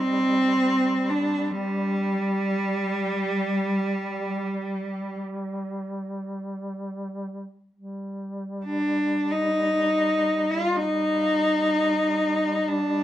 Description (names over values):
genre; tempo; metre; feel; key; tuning
caucasian folk, Caucasian lament; free time; none; none; unclear; A4 = 440 Hz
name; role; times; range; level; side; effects
clear cello; melody; 0.0-13.0 s; G3 to F4; -22 LUFS; equal; analog delay
dark duduk; drone; 0.0-13.0 s; G3; -31 LUFS; equal; none
room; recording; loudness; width
moderate small room reverb, RT60 0.5 s; dark, warm production; -23 LUFS; side -12 dB against mid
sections
0.0-7.8 A section; 7.8-13.0 A section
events
none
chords
none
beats
free time